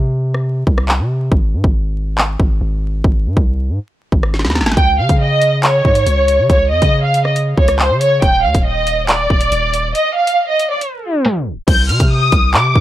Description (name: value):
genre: hip hop, drill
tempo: 139 BPM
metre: 4/4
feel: half-time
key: unclear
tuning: A4 = 440 Hz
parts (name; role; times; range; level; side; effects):
- long sustained 808-style bass; bass; 0.0-12.8 s; Eb1 to Db3; -17 LUFS; equal; none
- drill drum kit; drums; 0.3-12.8 s; crash cymbal, handclaps, hi-hat, kick drum, rim click, snare drum; -15 LUFS; equal; none
- rich studio violin section; melody; 4.8-12.8 s; Bb4 to G6; -14 LUFS; right 1 dB; low-pass filter
room: little or no reverb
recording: dry, gritty hardware recording, vinyl crackle, tape stop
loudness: -12 LUFS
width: side -13 dB against mid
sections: 0.0-11.7 A section; 11.7-12.8 B section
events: break 0.0-4.8, 9.9-11.7; drum fill 4.3-4.8; tape stop 10.8-11.7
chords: 0.0 N.C.; 8.2 Ebmaj7(no3); 11.7 Cmadd9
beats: 0.02 0.45 0.89 | 1.32 1.75 2.18 2.61 | 3.04 3.48 3.91 4.34 | 4.77 5.20 5.63 6.07 | 6.50 6.93 7.36 7.79 | 8.22 8.65 9.09 9.52 | 9.95 10.38 10.81 11.24 | 11.68 12.11 12.54